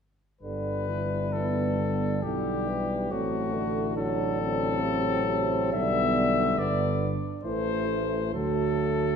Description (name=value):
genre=classical, hymn-like piece for brass band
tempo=68 BPM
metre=3/4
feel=uneven beats, rubato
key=G major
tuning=A4 = 443 Hz
part: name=clear cornet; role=melody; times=0.4-9.2 s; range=F#4 to E5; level=-30 LUFS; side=left 6 dB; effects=none
part: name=clear euphonium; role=accompaniment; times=0.4-9.2 s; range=F#3 to B3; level=-31 LUFS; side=left 1 dB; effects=none
part: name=warm euphonium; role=accompaniment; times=0.4-9.2 s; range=C3 to F#3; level=-33 LUFS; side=right 3 dB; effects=none
part: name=mellow tuba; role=bass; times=0.4-9.2 s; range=G1 to D2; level=-31 LUFS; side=right 1 dB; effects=none
part: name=warm French horn section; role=second line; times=1.3-9.2 s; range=B3 to F#4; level=-32 LUFS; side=right 3 dB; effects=none
room=wet recital hall reverb, RT60 1.6 s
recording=heard from further back in the room, faint mains hum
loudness=-25 LUFS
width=side -6 dB against mid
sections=0.4-9.2 A section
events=none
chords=0.4 G; 3.1 D7/A; 5.7 G/B; 7.4 Am; 8.3 D